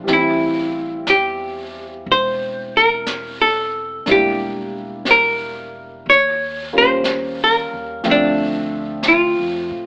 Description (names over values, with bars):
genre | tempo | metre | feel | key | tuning
jazz ballad | 60 BPM | 4/4 | swing 67% on 8ths | unclear | A4 = 440 Hz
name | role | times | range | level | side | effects
warm concert grand piano | accompaniment | 0.0-9.9 s | E3 to E5 | -24 LUFS | equal | none
upright bass | bass | 0.0-9.9 s | E1 to A2 | -34 LUFS | equal | none
archtop guitar, miked and amplified | melody | 0.1-9.9 s | D4 to Db5 | -15 LUFS | equal | none
jazz brush drum kit | drums | 0.1-9.9 s | brushed snare drum, hi-hat, snare drum | -27 LUFS | equal | none
room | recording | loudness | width
light reverb | AM radio sound | -14 LUFS | side -37 dB against mid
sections
0.0-9.9 A section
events
none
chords
0.1 Am7; 4.1 Em7b5; 6.1 Eb9; 8.0 Dm7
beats
| 0.07 1.06 2.06 3.06 | 4.06 5.05 6.05 7.05 | 8.04 9.04